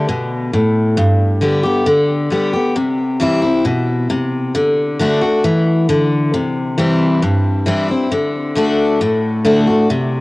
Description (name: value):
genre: country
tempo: 134 BPM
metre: 4/4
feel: straight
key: unclear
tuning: A4 = 439 Hz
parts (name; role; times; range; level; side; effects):
- picked steel-string acoustic guitar; solo; 0.0-10.2 s; G2 to G4; -13 LUFS; left 1 dB; cassette tape, tape echo
room: moderate spring reverb, RT60 2.9 s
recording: home recording on cassette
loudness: -13 LUFS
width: side -21 dB against mid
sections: 0.0-2.8 A section; 2.8-10.2 B section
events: none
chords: 0.0 N.C.; 1.0 G; 2.8 C; 4.5 D; 6.3 C; 8.1 D